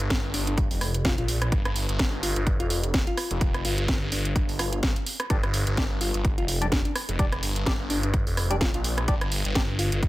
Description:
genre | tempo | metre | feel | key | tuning
bass house | 127 BPM | 4/4 | swing 56% on 16ths | G minor | A4 = 439 Hz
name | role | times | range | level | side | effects
phased detuned saw bass | bass | 0.0-10.1 s | F1 to Bb1 | -27 LUFS | equal | phaser, tube saturation, sidechain pumping
house drum kit | drums | 0.0-10.1 s | hi-hat, rim click, snare drum | -29 LUFS | right 1 dB | overdrive
electronic kick drum | drums | 0.1-10.1 s | none | -26 LUFS | equal | overdrive
bell-like FM electric piano | melody | 0.3-10.0 s | D4 to F4 | -33 LUFS | left 2 dB | chorus, digital delay
percussive organ stab | stabs | 5.3-9.6 s | G3 to D5 | -34 LUFS | left 1 dB | chorus, sidechain pumping, digital delay
room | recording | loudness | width
little or no reverb | none | -23 LUFS | side -17 dB against mid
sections
0.0-10.1 A section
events
none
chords
0.0 G5

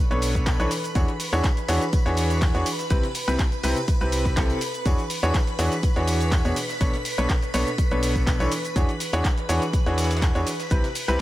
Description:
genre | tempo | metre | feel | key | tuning
piano house | 123 BPM | 4/4 | swing 53% on 16ths | E mixolydian | A4 = 441 Hz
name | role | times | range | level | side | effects
string machine, violins | sustained chords | 0.0-11.2 s | B4 to B5 | -32 LUFS | equal | ensemble chorus, sidechain pumping
clear grand piano | riff | 0.1-11.2 s | B2 to C#5 | -26 LUFS | equal | sidechain pumping, tape echo
organ-like FM bass | bass | 0.1-11.2 s | B1 to E2 | -26 LUFS | equal | sidechain pumping
house drum kit | drums | 0.1-11.2 s | cabasa, handclaps, hi-hat | -32 LUFS | equal | none
breakbeat sampler-style drum kit | drums | 0.2-11.2 s | hi-hat, snare drum | -40 LUFS | equal | none
tambourine | percussion | 0.2-11.2 s | none | -40 LUFS | right 2 dB | none
electronic kick drum | drums | 0.4-10.8 s | none | -22 LUFS | equal | none
room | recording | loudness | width
little or no reverb | none | -21 LUFS | side -15 dB against mid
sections
0.0-11.2 A section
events
none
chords
0.0 Bm9; 0.7 E13; 2.9 Cmaj7; 4.9 E13; 6.6 Bm9; 8.5 E13; 10.7 Cmaj7

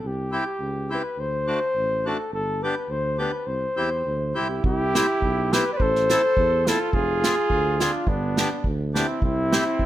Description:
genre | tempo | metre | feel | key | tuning
alpine folk, alpine dance band | 104 BPM | 2/4 | swing 53% on 8ths | C major | A4 = 439 Hz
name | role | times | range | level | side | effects
mellow flugelhorn | melody | 0.0-9.9 s | D4 to D5 | -24 LUFS | left 1 dB | none
mellow tuba | bass | 0.0-9.9 s | F1 to E2 | -29 LUFS | right 1 dB | none
accordion | accompaniment | 0.3-9.6 s | A3 to A4 | -28 LUFS | left 1 dB | none
mellow trumpet | second line | 4.4-9.9 s | B3 to B4 | -29 LUFS | right 7 dB | none
unplugged drum kit | drums | 4.6-9.9 s | hi-hat, kick drum, snare drum | -25 LUFS | right 1 dB | none
room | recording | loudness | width
light reverb | faint mains hum | -21 LUFS | side -13 dB against mid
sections
0.0-4.6 A section; 4.6-9.9 A section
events
none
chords
0.0 C; 1.2 D; 2.3 G; 3.5 C; 5.8 Am; 6.9 Fm; 8.1 G; 9.2 C

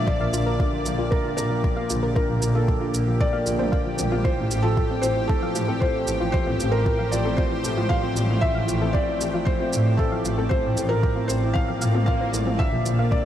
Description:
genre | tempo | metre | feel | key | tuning
piano and strings electronica | 115 BPM | 4/4 | straight | F major | A4 = 440 Hz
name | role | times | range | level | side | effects
felt-muted upright piano | melody | 0.0-13.2 s | A4 to F5 | -27 LUFS | equal | analog chorus, diffuse ambient delay
lush unison pad | sustained chords | 0.0-13.2 s | A2 to A5 | -31 LUFS | right 1 dB | chorus, sidechain pumping
dark grand piano | riff | 0.0-13.2 s | D3 to E4 | -28 LUFS | left 2 dB | diffuse ambient delay
electronic kick drum | drums | 0.1-13.2 s | none | -24 LUFS | equal | overdrive
soft round pluck | arpeggios | 0.2-13.1 s | C4 to F5 | -33 LUFS | left 1 dB | chorus, sidechain pumping, diffuse ambient delay
warm studio double bass section | bass | 0.2-13.0 s | A1 to Bb2 | -25 LUFS | equal | sidechain pumping
electronic shaker and toms | drums | 0.3-13.0 s | none | -34 LUFS | right 2 dB | overdrive
swell | sound effects | 11.8-12.6 s | none | -36 LUFS | right 1 dB | none
room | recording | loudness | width
moderate huge ambient reverb, RT60 8.8 s | dreamy mix soaked in reverb | -20 LUFS | side -11 dB against mid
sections
0.0-13.2 A section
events
swell 11.8-12.6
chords
0.0 Bbmaj7; 4.3 Fmaj7/A; 12.6 Bb

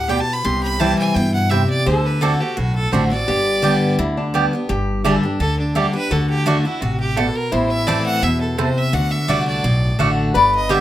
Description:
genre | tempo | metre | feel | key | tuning
bluegrass | 170 BPM | 4/4 | swing 53% on 8ths | G major | A4 = 440 Hz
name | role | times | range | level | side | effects
bright fiddle | melody | 0.0-10.8 s | D4 to C6 | -23 LUFS | right 1 dB | none
lap resonator guitar | second line | 0.0-10.8 s | D4 to B4 | -23 LUFS | left 2 dB | none
picked steel-string acoustic guitar | accompaniment | 0.0-10.8 s | G2 to G4 | -20 LUFS | left 1 dB | none
upright bass | bass | 0.0-10.8 s | G1 to G2 | -23 LUFS | equal | none
mandolin | stabs | 0.1-10.8 s | A3 to A5 | -21 LUFS | right 6 dB | none
room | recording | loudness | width
moderate studio ambience, RT60 0.5 s | none | -16 LUFS | side -13 dB against mid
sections
0.0-4.7 A section; 4.7-10.8 A section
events
none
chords
0.5 C; 1.9 D7; 3.3 G; 4.7 Gsus2; 6.1 D; 7.5 Am; 8.9 D

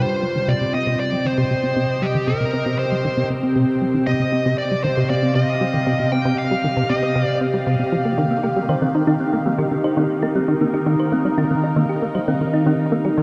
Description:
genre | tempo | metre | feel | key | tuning
ambient, sequencer-driven space music | 117 BPM | 4/4 | straight | C minor | A4 = 440 Hz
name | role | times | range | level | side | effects
bluesy overdriven lead guitar | melody | 0.0-7.4 s | G4 to G5 | -26 LUFS | equal | distortion, analog delay
phased analog pad | sustained chords | 0.0-13.2 s | C3 to G5 | -24 LUFS | equal | phaser, chorus
plucky analog bass | riff | 0.0-13.2 s | C3 to Eb4 | -24 LUFS | equal | analog chorus, analog delay
thumb-piano-like synth pluck | arpeggios | 8.3-13.1 s | Bb3 to C5 | -26 LUFS | equal | chorus, analog delay
room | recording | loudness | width
wet cathedral reverb, RT60 6.3 s | in a vast, echoing space, cassette tape | -20 LUFS | mono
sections
0.0-13.2 A section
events
none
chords
0.0 Cm; 8.2 Ebadd9

